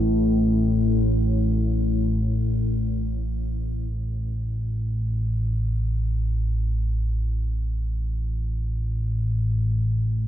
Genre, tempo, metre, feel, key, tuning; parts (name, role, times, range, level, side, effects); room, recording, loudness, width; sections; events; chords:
ambient; free time; A4 = 439 Hz
analog drone; solo; 0.0-10.3 s; A1 to A2; -22 LUFS; equal; chorus, tape echo
light reverb; dark, warm production, nothing above 7.6 kHz; -22 LUFS; side -12 dB against mid
0.0-3.9 A section; 3.9-10.3 B section